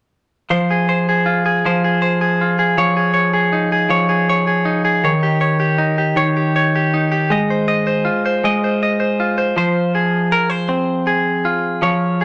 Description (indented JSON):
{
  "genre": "pop",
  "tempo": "53 BPM (dotted quarters)",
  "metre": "6/8",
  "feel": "straight",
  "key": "F minor",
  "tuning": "A4 = 440 Hz",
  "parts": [
    { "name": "direct-recorded clean electric guitar", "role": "solo", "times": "0.5-12.2 s", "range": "Eb3 to Eb5", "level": "-17 LUFS", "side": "equal", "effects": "none" }
  ],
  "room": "wet studio reverb, RT60 0.5 s",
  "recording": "none",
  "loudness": "-17 LUFS",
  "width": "mono",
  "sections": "0.5-9.6 A section; 9.6-12.2 B section",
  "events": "none",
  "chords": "0.5 Fm; 2.8 Dbadd9/F; 5.0 Eb7; 7.3 Ab6; 9.6 Fm",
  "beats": "| 0.51 1.64 | 2.77 3.91 | 5.04 6.18 | 7.31 8.44 | 9.57 10.71 | 11.84"
}